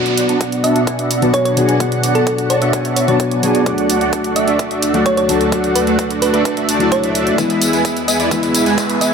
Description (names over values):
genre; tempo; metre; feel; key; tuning
EDM, festival progressive house; 129 BPM; 4/4; straight; unclear; A4 = 440 Hz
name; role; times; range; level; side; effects
felt-muted upright piano; accompaniment; 0.0-9.1 s; B2 to A4; -19 LUFS; left 4 dB; vintage 12-bit sampler grit, sidechain pumping
muted studio string section; sustained chords; 0.0-9.1 s; D2 to F#5; -25 LUFS; right 1 dB; sidechain pumping
supersaw chords; riff; 0.0-9.1 s; G#3 to A5; -17 LUFS; right 2 dB; lush chorus, sidechain pumping, low-pass filter
electronic hi-hat and tambourine; drums; 0.1-9.1 s; none; -22 LUFS; right 2 dB; none
electronic kick drum; drums; 0.4-8.9 s; none; -24 LUFS; equal; high-pass filter on kick
thumb-piano-like synth pluck; melody; 0.6-9.1 s; A4 to E5; -21 LUFS; right 1 dB; chorus, ping-pong delay
riser; sound effects; 7.9-9.1 s; none; -26 LUFS; right 2 dB; none
room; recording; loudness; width
moderate lush hall reverb, RT60 2.0 s; high-pass filter; -13 LUFS; side -6 dB against mid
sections
0.0-9.1 A section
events
build-up 0.0-9.1; filter sweep on supersaw synth 0.0-9.1; drum fill 7.4-9.1; riser 7.9-9.1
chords
0.0 Bm; 3.7 D; 7.4 E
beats
0.41 0.87 1.34 | 1.80 2.27 2.73 3.20 | 3.66 4.13 4.59 5.06 | 5.52 5.99 6.45 6.92 | 7.38 7.85 8.31 8.78